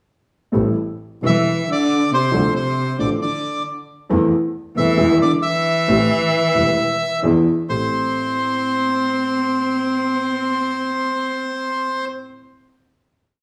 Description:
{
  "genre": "tango",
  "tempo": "134 BPM",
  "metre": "4/4",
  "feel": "rubato",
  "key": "A minor",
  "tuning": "A4 = 440 Hz",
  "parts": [
    { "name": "warm baby grand piano", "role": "accompaniment", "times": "0.5-12.3 s", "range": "E1 to A4", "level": "-23 LUFS", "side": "equal", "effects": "none" },
    { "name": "clear double bass", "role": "bass", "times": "0.5-7.9 s", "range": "E1 to E2", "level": "-26 LUFS", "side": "equal", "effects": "none" },
    { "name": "dark cello", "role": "second line", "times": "1.2-12.1 s", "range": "C3 to C4", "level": "-24 LUFS", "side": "equal", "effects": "none" },
    { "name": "bandoneon", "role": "melody", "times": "1.3-12.1 s", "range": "C5 to E5", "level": "-23 LUFS", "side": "equal", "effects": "none" }
  ],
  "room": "wet stone room reverb, RT60 1.1 s",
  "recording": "band playing live in one room, studio ambience",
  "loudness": "-19 LUFS",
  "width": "mono",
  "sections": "0.5-7.7 A section; 7.7-11.3 final chord",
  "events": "none",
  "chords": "0.5 Am7; 2.3 Dm7; 4.1 Am/E; 5.0 E; 5.9 Am7; 7.2 E7; 7.7 Am7"
}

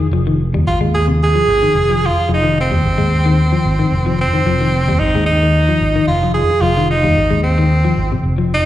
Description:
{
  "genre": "afrobeat",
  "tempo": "111 BPM",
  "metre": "4/4",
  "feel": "straight",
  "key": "F minor",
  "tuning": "A4 = 439 Hz",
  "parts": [
    { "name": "semi-hollow electric guitar", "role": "arpeggios", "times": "0.0-8.5 s", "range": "C3 to Ab3", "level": "-19 LUFS", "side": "left 4 dB", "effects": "none" },
    { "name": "fingered electric bass", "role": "bass", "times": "0.0-8.6 s", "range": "F1 to Eb2", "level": "-16 LUFS", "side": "equal", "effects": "none" },
    { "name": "clear tenor saxophone", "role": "melody", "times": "0.7-8.7 s", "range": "C4 to Ab4", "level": "-16 LUFS", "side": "right 2 dB", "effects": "slapback echo, analog delay" }
  ],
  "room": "light reverb",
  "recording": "live gig heard through the venue's PA, recital hall reverb, nothing above 10.8 kHz",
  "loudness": "-12 LUFS",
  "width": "side -13 dB against mid",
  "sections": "0.0-4.5 A section; 4.5-8.7 B section",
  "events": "none",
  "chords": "0.0 Fm7"
}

